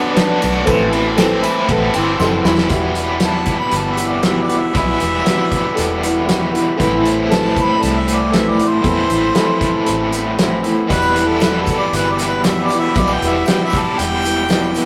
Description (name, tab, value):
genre	folk rock and heartland rock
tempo	117 BPM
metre	4/4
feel	straight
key	E minor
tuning	A4 = 440 Hz
part	clear upright piano	accompaniment	0.0-14.9 s	C4 to C6	-26 LUFS	equal	none
part	picked swing-style acoustic guitar	accompaniment	0.0-14.9 s	E2 to F#4	-24 LUFS	equal	none
part	tonewheel organ	sustained chords	0.0-14.9 s	G3 to D6	-34 LUFS	equal	none
part	biting overdriven guitar	riff	0.0-14.9 s	E2 to F#4	-21 LUFS	equal	tremolo
part	fingered electric bass	bass	0.0-14.8 s	E1 to B2	-27 LUFS	equal	none
part	loose indie drum kit	drums	0.2-14.9 s	hi-hat, kick drum, ride cymbal, snare drum	-22 LUFS	equal	none
part	tambourine	percussion	0.2-2.6, 10.9-14.9 s	none	-41 LUFS	equal	none
part	warm harmonica	second line	3.2-14.9 s	A4 to B5	-23 LUFS	equal	none
room	moderate stone room reverb, RT60 1.1 s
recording	rough rehearsal-room recording, tube saturation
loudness	-16 LUFS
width	mono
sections	0.0-2.7 A section; 2.7-14.9 B section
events	upright piano fill 1.2-2.7; drum fill 2.2-2.7; harmonica solo 2.7-14.9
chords	0.0 Bm; 0.7 Amadd9; 2.7 Emadd9; 6.8 Amadd9; 10.9 Emadd9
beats	0.17 | 0.67 1.18 1.69 2.19 | 2.70 3.21 3.72 4.23 | 4.74 5.26 5.77 6.28 | 6.79 7.30 7.82 8.33 | 8.84 9.36 9.87 10.39 | 10.90 11.41 11.93 12.45 | 12.96 13.48 13.99 14.51